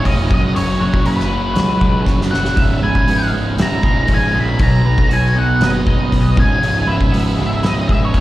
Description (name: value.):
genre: quiet-loud alternative rock.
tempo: 119 BPM.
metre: 4/4.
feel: straight.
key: C# dorian.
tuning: A4 = 440 Hz.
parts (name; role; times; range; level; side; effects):
octave-fuzz lead guitar; melody; 0.0-8.2 s; B4 to B5; -20 LUFS; left 1 dB; distortion, slapback echo, digital delay.
twelve-string electric guitar; arpeggios; 0.0-8.2 s; C#2 to B4; -24 LUFS; left 2 dB; wide subtle chorus.
thick fuzz guitar; riff; 0.0-8.2 s; C#2 to B3; -21 LUFS; right 5 dB; distortion, slapback echo.
fuzz picked electric bass; bass; 0.0-8.2 s; C#1 to C#2; -18 LUFS; equal; overdrive.
loose indie drum kit; drums; 0.1-8.2 s; hi-hat, kick drum, snare drum; -18 LUFS; equal; none.
room: light reverb.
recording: live gig heard through the venue's PA, recital hall reverb.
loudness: -13 LUFS.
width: side -16 dB against mid.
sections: 0.0-8.2 A section.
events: drum fill 2.1-2.6.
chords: 0.3 F#5; 2.6 C#m7; 4.6 B; 6.4 C#m7.